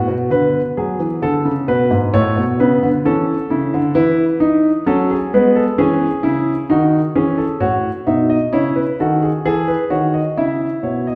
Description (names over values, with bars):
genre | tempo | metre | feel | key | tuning
classical, baroque-style 3-part fugue for grand piano | 66 BPM | 4/4 | straight | unclear | A4 = 440 Hz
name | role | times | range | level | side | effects
warm concert grand piano | solo | 0.0-11.2 s | G#2 to E5 | -16 LUFS | equal | none
room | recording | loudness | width
wet recital hall reverb, RT60 1.7 s | recorded in a church or concert hall | -16 LUFS | mono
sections
0.0-11.2 A section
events
none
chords
0.3 Bm/D; 2.1 A; 4.0 E; 5.8 C#m; 7.6 F#m/A; 9.4 E